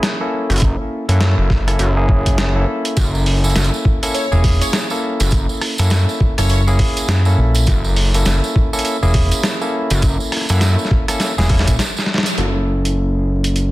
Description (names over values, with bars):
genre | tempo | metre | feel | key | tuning
glitch hop | 102 BPM | 4/4 | swing 60% on 16ths | unclear | A4 = 440 Hz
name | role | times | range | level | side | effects
barky tine electric piano | stabs | 0.0-13.7 s | A#3 to A4 | -22 LUFS | equal | overdrive, sidechain pumping, low-pass filter, dub echo
boom bap sampler-style drum kit | drums | 0.0-13.7 s | hi-hat, rim click, snare drum | -21 LUFS | equal | small room ambience
gritty driven synth bass | bass | 0.5-13.7 s | F#1 to F#2 | -15 LUFS | equal | none
electronic kick drum | drums | 0.6-11.8 s | none | -17 LUFS | equal | small room ambience
tambourine | percussion | 3.0-12.4 s | none | -27 LUFS | right 4 dB | none
plucky unison lead | melody | 4.1-6.6 s | C#5 | -27 LUFS | equal | wide subtle chorus, dub echo
fingered electric bass | bass | 4.3-11.8 s | E1 to A#1 | -15 LUFS | equal | none
room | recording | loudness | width
light reverb | dense, heavily limited modern master, vinyl crackle | -14 LUFS | side -17 dB against mid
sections
0.0-12.4 A section; 12.4-13.7 B section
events
drum fill 11.2-12.4; break 11.8-12.4; band accent 12.2; filter sweep on tine electric piano 12.4-13.7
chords
0.0 F#7#9